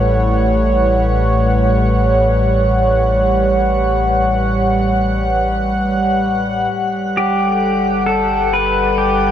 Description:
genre	ambient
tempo	free time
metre	none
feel	none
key	unclear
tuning	A4 = 440 Hz
part	warm analog pad	sustained chords	0.0-9.3 s	A2 to F#5	-15 LUFS	equal	chorus
part	warm sub bass	bass	0.0-9.3 s	G1 to A1	-20 LUFS	equal	none
part	pedal steel guitar	melody	7.2-9.3 s	G4 to B4	-16 LUFS	left 1 dB	tape echo
room	wet shimmer reverb, RT60 8.1 s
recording	none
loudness	-13 LUFS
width	side -10 dB against mid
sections	0.0-6.7 A section; 6.7-9.3 B section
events	none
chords	0.0 A13; 6.7 Gmaj9

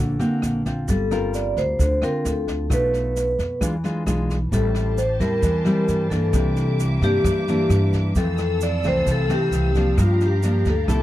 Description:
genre	bossa nova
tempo	132 BPM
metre	4/4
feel	straight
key	unclear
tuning	A4 = 439 Hz
part	nylon-string guitar	accompaniment	0.0-11.0 s	F2 to Bb4	-23 LUFS	equal	none
part	upright bass	bass	0.0-11.0 s	G1 to G2	-24 LUFS	equal	none
part	open jazz drum kit	drums	0.2-11.0 s	kick drum, rim click, snare drum	-28 LUFS	equal	none
part	tube shaker	percussion	0.2-11.0 s	none	-39 LUFS	right 10 dB	none
part	vibraphone with medium mallets	melody	0.9-11.0 s	F4 to D5	-24 LUFS	left 1 dB	none
part	rich symphonic violin section	sustained chords	4.5-11.0 s	Bb3 to E6	-34 LUFS	right 1 dB	none
room	little or no reverb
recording	dry, close 1970s-style studio recording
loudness	-18 LUFS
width	side -14 dB against mid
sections	0.0-11.0 A section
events	none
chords	0.0 D7alt; 0.9 Gm11; 2.7 Bm7b5; 3.6 E7b9; 4.5 Am7; 6.3 C9; 8.2 Fmaj7; 10.0 Gm7

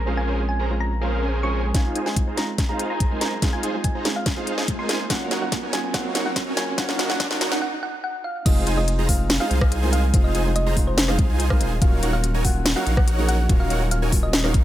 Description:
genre	future bass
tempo	143 BPM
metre	4/4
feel	half-time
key	unclear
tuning	A4 = 441 Hz
part	thumb-piano-like synth pluck	melody	0.0-14.4 s	C5 to Db6	-30 LUFS	equal	chorus, sidechain pumping, tape echo
part	saturated sub bass	bass	0.0-1.7, 8.5-14.6 s	Eb1 to C2	-23 LUFS	equal	sidechain pumping
part	felt-muted upright piano	accompaniment	0.1-14.6 s	Gb3 to Bb4	-30 LUFS	right 2 dB	sidechain pumping, tape echo
part	supersaw chords	riff	0.1-14.6 s	Db4 to Bb5	-28 LUFS	right 1 dB	sidechain pumping, low-pass filter
part	electronic kick drum	drums	1.7-14.6 s	none	-21 LUFS	equal	overdrive
part	trap drum kit	drums	1.7-14.6 s	crash cymbal, hi-hat, rim click, snare drum	-24 LUFS	left 1 dB	high-pass filter on snare, high-pass filter on hats, high-pass filter on cymbals
part	riser	sound effects	3.4-7.6 s	none	-31 LUFS	right 2 dB	none
room	little or no reverb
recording	high-pass filter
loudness	-19 LUFS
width	side -13 dB against mid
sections	0.0-1.7 A section; 1.7-8.5 B section; 8.5-14.6 C section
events	build-up 1.7-8.5; drum fill 1.7-7.6; filter sweep on supersaw synth 1.7-8.5; filter sweep on synth pluck 1.7-8.5; filter sweep 1.7-8.5; riser 3.4-7.6; break 7.6-8.5; drop 8.5-14.6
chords	0.0 Bbm9; 1.7 Fm7; 5.1 Ebm9; 8.2 N.C.; 8.5 Fm7; 11.8 Ebm9

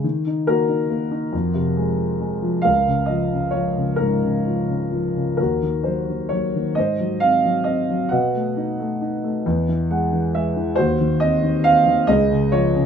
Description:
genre	classical, lyrical solo piano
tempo	45 BPM (dotted quarters)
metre	6/8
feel	rubato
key	Eb dorian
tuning	A4 = 440 Hz
part	dark grand piano	solo	0.0-12.9 s	Db2 to F#5	-18 LUFS	equal	none
room	moderate studio reverb, RT60 0.6 s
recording	minimal, uncompressed stereo recording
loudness	-18 LUFS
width	side -7 dB against mid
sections	0.0-12.9 A section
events	grand piano fill 9.4-10.8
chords	0.0 Ebm; 1.3 Fm; 2.6 Db6; 5.4 Ebm; 6.8 Ab7; 8.1 B7; 9.4 E; 10.8 Ebm69; 12.1 Db

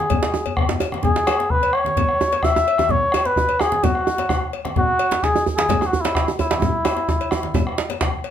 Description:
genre	west african traditional, West African drum ensemble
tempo	129 BPM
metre	4/4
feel	straight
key	E major pentatonic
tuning	A4 = 440 Hz
part	trumpet with cup mute	melody	0.0-8.0 s	E4 to E5	-20 LUFS	left 1 dB	none
part	djembe	percussion	0.0-8.3 s	none	-27 LUFS	left 5 dB	none
part	bombo	percussion	0.1-8.3 s	none	-24 LUFS	left 2 dB	none
part	congas	percussion	0.1-8.2 s	none	-29 LUFS	right 6 dB	none
part	cowbell	percussion	0.1-8.3 s	none	-31 LUFS	left 7 dB	none
part	djembe	percussion	0.2-8.1 s	none	-23 LUFS	right 5 dB	none
room	light reverb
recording	none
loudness	-17 LUFS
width	side -9 dB against mid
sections	0.0-8.3 A section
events	drum fill 0.5-1.0, 6.6-8.3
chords	none

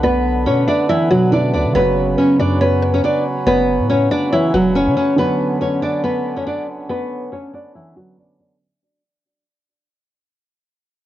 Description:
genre	hip hop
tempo	140 BPM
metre	4/4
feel	half-time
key	B minor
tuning	A4 = 441 Hz
part	nylon-string guitar	melody	0.0-8.6 s	E3 to D5	-16 LUFS	equal	low-pass filter, cassette tape, analog delay
part	mallet-like synth pluck	second line	0.0-5.1 s	B4 to E5	-26 LUFS	equal	chorus, phaser, cassette tape, analog delay
part	dark baby grand piano	accompaniment	0.0-8.6 s	C#3 to F#4	-23 LUFS	right 3 dB	low-pass filter, cassette tape
part	pedal harmonium	sustained chords	0.0-8.6 s	D3 to B4	-25 LUFS	left 1 dB	cassette tape
part	long sustained 808-style bass	bass	0.0-5.0 s	E1 to C#3	-21 LUFS	equal	none
room	light reverb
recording	home recording on cassette, low-pass filter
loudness	-14 LUFS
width	side -13 dB against mid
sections	0.0-5.2 A section; 5.2-8.6 B section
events	fade-out 5.2-8.6; filter sweep 5.2-8.6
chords	0.0 Bmadd9; 1.8 F#sus4; 5.2 Bmadd9

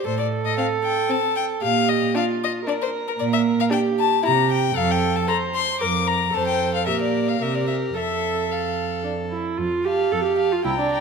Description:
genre	quick classical-period movement for string quartet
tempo	114 BPM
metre	3/4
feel	straight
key	Bb major, F major from 3.2 s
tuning	A4 = 440 Hz
part	rich violin	melody	0.0-11.0 s	Bb4 to D6	-24 LUFS	left 9 dB	none
part	warm viola	accompaniment	0.0-11.0 s	D4 to C5	-24 LUFS	right 5 dB	none
part	rich cello	bass	0.0-11.0 s	C2 to C3	-25 LUFS	right 5 dB	none
part	rich violin	second line	0.6-11.0 s	C4 to G5	-29 LUFS	left 2 dB	none
room	wet scoring stage reverb, RT60 1.6 s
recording	none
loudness	-19 LUFS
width	side -5 dB against mid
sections	0.0-9.6 A section; 9.6-11.0 B section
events	none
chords	0.0 A7(no3); 1.6 Bb5; 4.2 C7(no3); 4.8 F; 5.8 Bb/F; 6.3 F; 6.9 Bb; 7.4 C7; 7.9 F

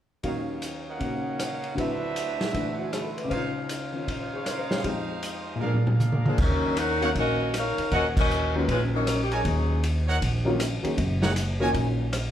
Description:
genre	jazz, big band swing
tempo	156 BPM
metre	4/4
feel	swing 65% on 8ths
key	Eb dorian, Eb minor from 6.4 s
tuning	A4 = 440 Hz
part	clear upright piano	accompaniment	0.2-12.1 s	Db2 to F5	-30 LUFS	left 2 dB	none
part	brilliant trumpet section	stabs	0.2-11.7 s	D4 to Eb6	-32 LUFS	right 2 dB	none
part	vintage drum kit	drums	0.2-12.2 s	crash cymbal, hi-hat, kick drum, ride cymbal, rim click, snare drum, toms	-29 LUFS	equal	none
part	warm saxophone section	melody	6.3-9.8 s	F3 to Gb5	-26 LUFS	left 2 dB	none
part	upright bass	bass	6.4-12.3 s	Gb1 to Eb2	-27 LUFS	equal	none
room	wet large studio reverb, RT60 1.0 s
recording	heard from further back in the room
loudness	-24 LUFS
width	side -10 dB against mid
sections	0.2-6.4 A section; 6.4-12.3 B section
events	drum fill 5.6-6.4; band accent 8.1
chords	0.2 Ebm9; 1.8 D13; 3.3 Dbmaj9; 4.8 Fm7; 5.6 Bb7; 6.4 Ebm7

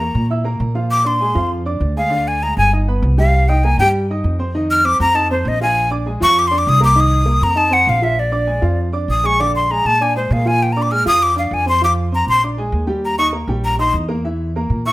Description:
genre	jazz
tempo	198 BPM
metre	4/4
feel	straight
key	Bb mixolydian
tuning	A4 = 439 Hz
part	breathy bright jazz flute	melody	0.0-14.9 s	C5 to F6	-15 LUFS	left 1 dB	slapback echo, plate reverb
part	clear upright piano	accompaniment	0.0-14.9 s	D3 to Fb6	-22 LUFS	right 1 dB	plate reverb
part	upright bass	bass	0.0-14.9 s	G1 to Bb2	-18 LUFS	equal	none
room	light reverb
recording	rough home demo mix, faint mains hum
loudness	-14 LUFS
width	side -17 dB against mid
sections	0.0-8.2 A section; 8.2-14.9 A section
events	flute solo 0.0-14.9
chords	0.0 Bb(b5, no3); 0.9 Bb9; 2.1 Bb7; 2.7 Gaug; 3.3 Cm7; 4.5 F5; 5.8 Bb9; 7.0 Cm7; 7.6 F5; 8.2 Bb7; 11.8 F5; 12.4 Bb6; 13.0 Eb; 14.2 Bb(b5, no3)

